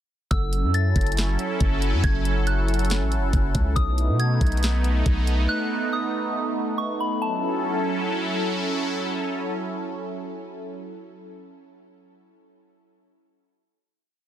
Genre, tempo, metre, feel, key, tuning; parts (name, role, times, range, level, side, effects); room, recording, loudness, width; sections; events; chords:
hip hop, atmospheric cloud-rap; 139 BPM; 4/4; half-time; F# dorian; A4 = 440 Hz
soft synth bell; melody; 0.3-8.5 s; A5 to A6; -30 LUFS; left 1 dB; chorus, phaser, digital delay
sweeping resonant pad; sustained chords; 0.3-10.9 s; F#3 to A4; -26 LUFS; right 1 dB; chorus, sidechain pumping
long sustained 808-style bass; bass; 0.3-5.5 s; F#1 to B2; -22 LUFS; equal
trap drum kit; drums; 0.3-5.4 s; hi-hat, kick drum, snare drum; -24 LUFS; equal
large celesta; texture; 0.3-3.7 s; A4 to E6; -42 LUFS; right 4 dB
digital ambience; dense, heavily limited modern master; -21 LUFS; side -11 dB against mid
0.3-7.2 verse; 7.2-10.7 final chord
0.3 F#m7; 3.8 B6; 7.2 F#m7